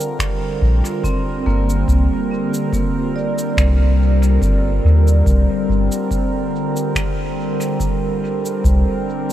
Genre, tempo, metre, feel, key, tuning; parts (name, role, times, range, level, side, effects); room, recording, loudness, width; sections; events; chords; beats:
ambient dub; 71 BPM; 4/4; swing 54% on 16ths; A4 = 441 Hz
warbly tape-like pad; sustained chords; 0.0-9.3 s; D3 to Bb4; -20 LUFS; equal; chorus, built-in reverb, phaser
electronic shaker and finger snaps; drums; 0.0-9.3 s; -29 LUFS; equal; dub echo
electronic kick drum; drums; 0.2-8.8 s; -23 LUFS; equal
soft dub sub bass; bass; 0.6-8.8 s; G1 to Eb2; -14 LUFS; equal; tube saturation
vibraphone with medium mallets; arpeggios; 1.0-9.3 s; Bb3 to D5; -26 LUFS; right 2 dB; tape echo
moderate huge ambient reverb, RT60 5.2 s; dreamy mix soaked in reverb; -15 LUFS; side -12 dB against mid
0.0-9.3 A section
0.0 C7(no3)
0.20 1.04 | 1.89 2.73 3.58 4.42 | 5.27 6.11 6.96 7.80 | 8.65